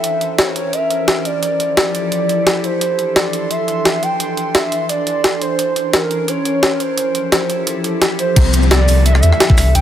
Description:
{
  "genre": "liquid drum and bass",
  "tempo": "173 BPM",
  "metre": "4/4",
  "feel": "swing 54% on 16ths",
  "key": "C major",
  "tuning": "A4 = 440 Hz",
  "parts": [
    { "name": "hollow clarinet-like synth lead", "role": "melody", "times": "0.0-9.8 s", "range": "Bb4 to G5", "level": "-19 LUFS", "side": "right 1 dB", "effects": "chorus, dub echo" },
    { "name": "glassy FM pad", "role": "sustained chords", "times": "0.0-9.8 s", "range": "E3 to C6", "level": "-21 LUFS", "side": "equal", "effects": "ensemble chorus, built-in reverb" },
    { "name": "jungle sampler-style drum kit", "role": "drums", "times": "0.0-9.8 s", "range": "crash cymbal, hi-hat, rim click, shaker, snare drum", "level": "-17 LUFS", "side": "equal", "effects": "none" },
    { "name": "sub bass with octave", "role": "bass", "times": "8.4-9.8 s", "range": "C2 to E2", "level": "-12 LUFS", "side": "equal", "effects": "none" },
    { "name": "electronic kick drum", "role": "drums", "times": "8.4-9.6 s", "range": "none", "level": "-10 LUFS", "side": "equal", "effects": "none" },
    { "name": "downlifter", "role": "sound effects", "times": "8.4-9.8 s", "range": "none", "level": "-22 LUFS", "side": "left 4 dB", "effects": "none" }
  ],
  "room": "light reverb, digital ambience",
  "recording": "none",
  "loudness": "-13 LUFS",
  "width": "side -10 dB against mid",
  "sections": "0.0-8.4 A section; 8.4-9.8 B section",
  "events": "drop 8.4-9.8",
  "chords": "0.0 C7b9; 1.4 Fmaj9; 2.8 C69; 5.6 C7b9; 7.0 Fmaj9; 8.4 C69",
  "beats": "| 0.04 0.39 0.73 1.08 | 1.43 1.77 2.12 2.47 | 2.81 3.16 3.51 3.85 | 4.20 4.55 4.89 5.24 | 5.59 5.93 6.28 6.63 | 6.97 7.32 7.67 8.02 | 8.36 8.71 9.06 9.40 | 9.75"
}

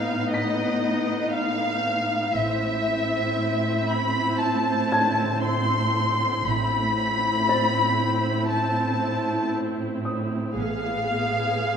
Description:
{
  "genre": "cinematic, suspense film score",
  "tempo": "59 BPM",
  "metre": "4/4",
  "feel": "straight",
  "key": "A hungarian minor",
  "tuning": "A4 = 440 Hz",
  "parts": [
    { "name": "warm studio violin section", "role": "melody", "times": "0.0-11.8 s", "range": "D#5 to C6", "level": "-24 LUFS", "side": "left 2 dB", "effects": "none" },
    { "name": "rich studio viola section", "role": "accompaniment", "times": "0.0-11.8 s", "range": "B3 to G#4", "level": "-27 LUFS", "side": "equal", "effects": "none" },
    { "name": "dark studio cello section", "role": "bass", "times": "0.0-11.8 s", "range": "A2", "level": "-29 LUFS", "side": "right 2 dB", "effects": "none" },
    { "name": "clear baby grand piano", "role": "texture", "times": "0.0-11.8 s", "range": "A4 to B6", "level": "-33 LUFS", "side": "left 2 dB", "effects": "none" },
    { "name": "dark studio double bass section", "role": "bass", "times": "2.4-11.6 s", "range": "A1", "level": "-32 LUFS", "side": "right 4 dB", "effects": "none" }
  ],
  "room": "moderate scoring stage reverb, RT60 1.5 s",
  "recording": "none",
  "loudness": "-21 LUFS",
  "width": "side -7 dB against mid",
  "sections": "0.0-11.8 A section",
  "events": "none",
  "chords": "0.0 G#m/A; 2.4 Am; 10.6 G#m/A",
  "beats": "0.33 1.34 | 2.36 3.38 4.41 5.44 | 6.47 7.49 8.50 9.53 | 10.57 11.60"
}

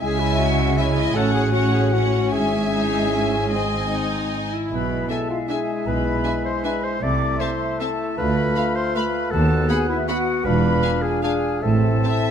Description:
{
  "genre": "classical",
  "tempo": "155 BPM",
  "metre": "3/4",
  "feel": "uneven beats, rubato",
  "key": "C# minor",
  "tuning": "A4 = 440 Hz",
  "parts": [
    { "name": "rich studio violin section", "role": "melody", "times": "0.0-12.1 s", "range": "F#5 to B5", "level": "-32 LUFS", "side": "left 3 dB", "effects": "none" },
    { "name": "flute section", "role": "second line", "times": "0.0-12.3 s", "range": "E5 to D6", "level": "-29 LUFS", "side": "left 2 dB", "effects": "none" },
    { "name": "mellow oboe", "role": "second line", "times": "0.0-12.3 s", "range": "D#5 to F#5", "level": "-32 LUFS", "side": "equal", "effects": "none" },
    { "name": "warm clarinet", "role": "second line", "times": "0.0-12.3 s", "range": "E4 to D5", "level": "-26 LUFS", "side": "left 2 dB", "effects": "none" },
    { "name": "warm studio violin section", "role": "second line", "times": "0.0-12.3 s", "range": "C#5 to F#5", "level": "-30 LUFS", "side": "left 3 dB", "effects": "none" },
    { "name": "clear bassoon", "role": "accompaniment", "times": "0.0-12.3 s", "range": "G#3 to D4", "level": "-32 LUFS", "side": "right 1 dB", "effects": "none" },
    { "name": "rich studio viola section", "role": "accompaniment", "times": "0.0-12.1 s", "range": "A3 to E4", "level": "-30 LUFS", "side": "right 2 dB", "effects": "none" },
    { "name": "mellow French horn section", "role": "sustained chords", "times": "0.0-12.3 s", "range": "G#3 to F#4", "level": "-27 LUFS", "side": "left 4 dB", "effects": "none" },
    { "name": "rich studio double bass section", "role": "bass", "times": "0.0-12.0 s", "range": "E1 to D#2", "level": "-25 LUFS", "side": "right 3 dB", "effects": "none" },
    { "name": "warm studio cello section", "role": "bass", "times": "0.0-12.0 s", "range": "D2 to C#3", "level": "-26 LUFS", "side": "right 2 dB", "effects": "none" }
  ],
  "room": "moderate recital hall reverb, RT60 1.4 s",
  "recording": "none",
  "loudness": "-18 LUFS",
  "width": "side -8 dB against mid",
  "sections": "0.0-12.3 A section",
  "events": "none",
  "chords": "0.0 C#m; 1.2 F#m/A; 2.3 C#m/G#; 3.5 G#; 4.7 E7/B; 7.0 Am/C; 8.2 Bm7b5/D; 9.3 B7/D#; 10.5 E7b9; 11.6 Am",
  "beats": "| 0.01 0.38 0.78 | 1.15 1.53 1.94 | 2.33 2.73 3.13 | 3.52 3.92 4.32 | 4.71 5.10 5.50 | 5.87 6.24 6.64 | 7.02 7.41 7.80 | 8.18 8.56 8.96 | 9.32 9.70 10.09 | 10.46 10.83 11.23 | 11.63 12.04"
}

